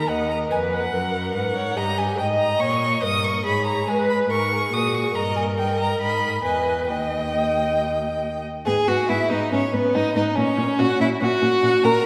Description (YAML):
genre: quick classical-period movement for string quartet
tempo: 141 BPM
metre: 4/4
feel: straight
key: G# minor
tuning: A4 = 440 Hz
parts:
  - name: rich violin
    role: melody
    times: 0.0-12.1 s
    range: B4 to D#6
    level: -28 LUFS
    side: equal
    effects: none
  - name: rich violin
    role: second line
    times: 0.0-12.1 s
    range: B3 to D#5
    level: -27 LUFS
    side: equal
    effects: none
  - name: dark viola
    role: accompaniment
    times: 0.0-11.9 s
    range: B3 to D#5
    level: -28 LUFS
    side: equal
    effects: none
  - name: clear cello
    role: bass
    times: 0.0-11.9 s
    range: D#2 to G#3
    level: -29 LUFS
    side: equal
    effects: none
room: wet concert hall reverb, RT60 2.1 s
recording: none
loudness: -22 LUFS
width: mono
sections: 0.0-8.7 A section; 8.7-12.1 B section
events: none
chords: 0.1 Ebm; 1.8 D#7/G; 3.5 G#m; 4.3 G#9sus4; 5.2 D#/G; 6.0 G#m; 6.9 D#; 8.7 G#m; 10.4 F#/A#